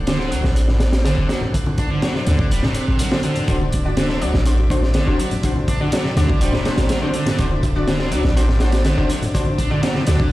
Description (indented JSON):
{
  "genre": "breakbeat, breaks",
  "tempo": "123 BPM",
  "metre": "4/4",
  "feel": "straight",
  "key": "unclear",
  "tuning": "A4 = 443 Hz",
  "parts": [
    { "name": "bright tonewheel organ", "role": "sustained chords", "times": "0.0-10.3 s", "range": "D3 to F#5", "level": "-29 LUFS", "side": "equal", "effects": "overdrive, slow rotary speaker, sidechain pumping" },
    { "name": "warm 808-style bass", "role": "bass", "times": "0.0-10.3 s", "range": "D1 to D2", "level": "-18 LUFS", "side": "equal", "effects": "tube saturation" },
    { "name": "distorted electric guitar", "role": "riff", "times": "0.1-10.3 s", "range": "C3 to D4", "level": "-25 LUFS", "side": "equal", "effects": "distortion, tube saturation, dub echo" },
    { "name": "crunchy breakbeat drum kit", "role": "drums", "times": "0.1-10.3 s", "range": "hi-hat, kick drum, snare drum", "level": "-21 LUFS", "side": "equal", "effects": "none" },
    { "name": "congas", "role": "percussion", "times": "0.7-10.0 s", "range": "none", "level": "-27 LUFS", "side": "left 1 dB", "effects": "none" },
    { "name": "orchestra-hit-like synth stab", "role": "stabs", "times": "3.5-10.3 s", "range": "D4 to D5", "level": "-25 LUFS", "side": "left 1 dB", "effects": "built-in reverb, dub echo" }
  ],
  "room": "light reverb",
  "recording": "played on a big sound system in a bare room, stone room reverb",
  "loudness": "-16 LUFS",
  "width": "side -16 dB against mid",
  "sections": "0.0-10.3 A section",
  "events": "none",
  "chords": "0.0 D7"
}